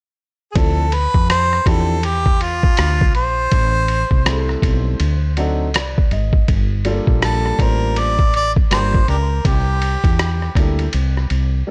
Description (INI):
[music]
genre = hip hop, jazz-hop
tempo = 81 BPM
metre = 4/4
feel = swing 61% on 16ths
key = D minor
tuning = A4 = 441 Hz
[part]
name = warm harmonica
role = melody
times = 0.5-10.9 s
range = D4 to D5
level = -23 LUFS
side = equal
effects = tape echo
[part]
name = dark baby grand piano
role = accompaniment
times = 0.5-11.7 s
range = F3 to F#5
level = -26 LUFS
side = equal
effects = none
[part]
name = woody fretless electric bass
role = bass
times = 0.6-11.6 s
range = G1 to F2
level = -21 LUFS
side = equal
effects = transformer saturation
[part]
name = lo-fi sampler-style drum kit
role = drums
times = 0.6-11.5 s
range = hi-hat, kick drum, ride cymbal, rim click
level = -20 LUFS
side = equal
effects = none
[sound]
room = little or no reverb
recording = dry, gritty hardware recording, cassette tape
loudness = -17 LUFS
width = mono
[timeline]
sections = 0.6-11.7 A section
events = grand piano fill 5.0-6.5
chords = 0.0 N.C.; 0.6 Dm9; 3.5 Am7; 5.0 D7b9; 6.5 Gm9; 9.4 C13